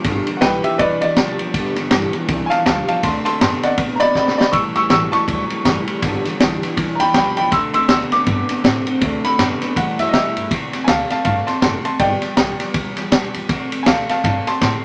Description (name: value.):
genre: rockabilly.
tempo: 161 BPM.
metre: 4/4.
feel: swing 60% on 8ths.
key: unclear.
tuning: A4 = 441 Hz.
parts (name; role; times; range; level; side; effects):
bright upright piano; melody; 0.0-14.8 s; G4 to E6; -21 LUFS; equal; none.
picked steel-string acoustic guitar; accompaniment; 0.0-14.8 s; G2 to G4; -29 LUFS; equal; none.
electric guitar through a small old amp; riff; 0.0-10.5 s; G2 to C4; -27 LUFS; equal; warbly pitch drift.
upright bass; bass; 0.0-14.8 s; F#1 to C3; -30 LUFS; equal; none.
vintage drum kit; drums; 0.0-14.7 s; kick drum, ride cymbal, snare drum; -21 LUFS; equal; none.
room: light reverb.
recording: none.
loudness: -18 LUFS.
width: mono.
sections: 0.0-10.5 A section; 10.5-14.8 B section.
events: drum fill 4.2-4.5; upright piano solo 10.5-14.8.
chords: 0.0 G7; 3.0 D7; 4.5 A7; 6.0 G7; 7.5 D7; 9.8 A7; 10.5 D7; 12.0 G7; 13.5 D7.